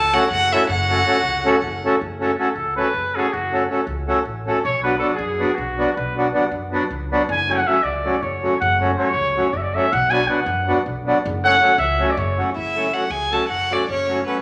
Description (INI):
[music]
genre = balkan folk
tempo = 318 BPM (eighths)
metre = 7/8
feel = straight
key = F# minor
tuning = A4 = 440 Hz
[part]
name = clear violin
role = melody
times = 0.0-1.8, 12.6-14.4 s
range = B4 to A5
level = -23 LUFS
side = equal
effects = none
[part]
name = warm trumpet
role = second line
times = 0.0-14.4 s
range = B3 to G#5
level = -23 LUFS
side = equal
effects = none
[part]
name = upright bass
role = bass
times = 0.0-14.2 s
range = F#1 to F#2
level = -31 LUFS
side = equal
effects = none
[part]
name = accordion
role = accompaniment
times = 0.1-14.4 s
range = F#3 to A4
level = -23 LUFS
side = equal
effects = none
[sound]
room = wet large studio reverb, RT60 1.1 s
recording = none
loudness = -20 LUFS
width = mono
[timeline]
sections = 0.0-2.0 A section; 2.0-12.6 B section; 12.6-14.4 C section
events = trumpet solo 2.0-12.6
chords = 0.0 F#m; 4.7 Bm; 7.3 F#m; 9.9 Bm; 11.2 F#m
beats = 0.13 0.32 0.51 | 0.69 0.88 1.07 1.26 1.45 1.63 1.82 | 2.01 2.20 2.39 2.58 2.77 2.95 3.14 | 3.33 3.52 3.71 3.90 4.08 4.27 4.46 | 4.65 4.84 5.03 5.22 5.41 5.59 5.78 | 5.97 6.16 6.35 6.54 6.73 6.92 7.10 | 7.29 7.48 7.67 7.86 8.04 8.23 8.42 | 8.61 8.80 8.99 9.18 9.36 9.55 9.74 | 9.93 10.12 10.30 10.49 10.68 10.87 11.06 | 11.25 11.44 11.63 11.81 12.00 12.19 12.38 | 12.57 12.76 12.95 13.14 13.33 13.52 13.71 | 13.90 14.09 14.29